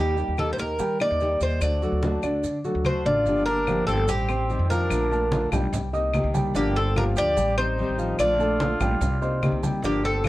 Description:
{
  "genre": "latin, Cuban son and guajira",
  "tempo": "146 BPM",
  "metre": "4/4",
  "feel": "straight",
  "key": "G minor",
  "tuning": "A4 = 440 Hz",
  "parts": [
    { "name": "Cuban tres", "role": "melody", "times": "0.0-10.3 s", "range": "G4 to D5", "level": "-25 LUFS", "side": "equal", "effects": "none" },
    { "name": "nylon-string guitar", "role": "accompaniment", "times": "0.0-10.3 s", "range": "C3 to G4", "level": "-31 LUFS", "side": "left 1 dB", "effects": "none" },
    { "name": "dark concert grand piano", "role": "arpeggios", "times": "0.0-10.3 s", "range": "D3 to Eb6", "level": "-28 LUFS", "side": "equal", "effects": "none" },
    { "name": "upright bass", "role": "bass", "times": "0.0-10.3 s", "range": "G1 to Eb3", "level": "-27 LUFS", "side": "equal", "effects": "none" },
    { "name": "congas", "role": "percussion", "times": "0.2-10.3 s", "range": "none", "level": "-30 LUFS", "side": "equal", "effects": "none" },
    { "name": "maracas", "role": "percussion", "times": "0.2-10.3 s", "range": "none", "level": "-44 LUFS", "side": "right 6 dB", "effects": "none" },
    { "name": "claves", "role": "percussion", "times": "0.4-10.3 s", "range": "none", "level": "-36 LUFS", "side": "left 6 dB", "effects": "none" },
    { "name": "warm trumpet", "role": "second line", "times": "2.9-10.3 s", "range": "Bb3 to G4", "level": "-33 LUFS", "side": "equal", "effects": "none" }
  ],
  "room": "light reverb",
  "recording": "worn, warbling old tape, cassette tape, warbly pitch drift",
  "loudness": "-21 LUFS",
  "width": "side -16 dB against mid",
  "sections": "0.0-3.3 A section; 3.3-10.3 B section",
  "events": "none",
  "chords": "0.0 Eb; 1.6 D; 3.3 Gm7; 4.1 Am7b5; 4.9 Bbmaj7; 5.7 Cm7; 6.5 Gm7; 7.4 Am7b5; 8.2 Bbmaj7; 9.0 Cm7",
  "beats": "0.38 0.79 1.20 | 1.61 2.03 2.44 2.85 | 3.26 3.67 4.08 4.49 | 4.90 5.31 5.72 6.14 | 6.55 6.96 7.37 7.78 | 8.19 8.60 9.01 9.42 | 9.83 10.24"
}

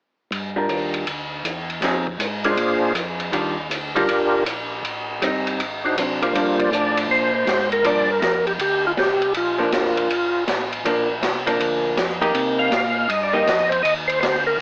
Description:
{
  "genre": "soul jazz organ trio",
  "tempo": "160 BPM",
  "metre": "4/4",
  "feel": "swing 66% on 8ths",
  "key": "G minor",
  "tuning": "A4 = 440 Hz",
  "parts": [
    { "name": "mellow tonewheel organ", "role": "bass", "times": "0.3-14.6 s", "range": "F1 to C3", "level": "-35 LUFS", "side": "equal", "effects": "slow rotary speaker" },
    { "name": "vintage drum kit", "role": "drums", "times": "0.3-14.3 s", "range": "hi-hat, kick drum, ride cymbal, snare drum", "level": "-26 LUFS", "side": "equal", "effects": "cassette tape" },
    { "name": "vintage hollow-body jazz guitar", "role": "accompaniment", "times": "0.6-13.5 s", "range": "Eb3 to Bb4", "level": "-25 LUFS", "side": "equal", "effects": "cassette tape" },
    { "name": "percussive tonewheel organ", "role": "melody", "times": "2.5-14.6 s", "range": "G2 to F5", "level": "-23 LUFS", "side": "equal", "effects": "slow rotary speaker, overdrive, chorus vibrato, cassette tape, analog delay" }
  ],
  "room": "moderate small room reverb, RT60 0.5 s",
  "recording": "home recording on cassette, AM radio sound",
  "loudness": "-21 LUFS",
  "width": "mono",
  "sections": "0.3-6.3 A section; 6.3-14.6 B section",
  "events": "band accent 6.5",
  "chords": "0.3 Gm7; 1.8 Fm7; 2.6 Bb7; 3.3 Ebmaj9; 4.8 Am7b5; 5.6 Ab7#11; 6.3 Gm7; 12.3 Cm7",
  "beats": "| 0.31 0.69 1.06 1.44 | 1.82 2.20 2.57 2.95 | 3.33 3.71 4.08 4.46 | 4.84 5.21 5.59 5.97 | 6.34 6.72 7.09 7.47 | 7.85 8.22 8.60 8.97 | 9.35 9.72 10.10 10.47 | 10.85 11.22 11.60 11.97 | 12.34 12.72 13.09 13.47 | 13.84 14.21 14.59"
}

